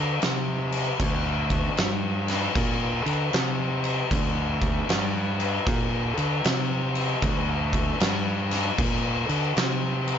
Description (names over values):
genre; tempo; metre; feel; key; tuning
stoner and doom metal; 77 BPM; 4/4; swing 65% on 8ths; unclear; A4 = 441 Hz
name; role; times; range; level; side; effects
fuzz fingered electric bass; bass; 0.0-10.2 s; D2 to D3; -27 LUFS; right 1 dB; overdrive
oversized low-tuned drum kit; drums; 0.2-10.2 s; crash cymbal, kick drum, snare drum; -25 LUFS; left 1 dB; none
room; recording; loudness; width
little or no reverb; nothing above 7.6 kHz; -23 LUFS; side -8 dB against mid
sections
0.0-10.2 A section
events
none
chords
none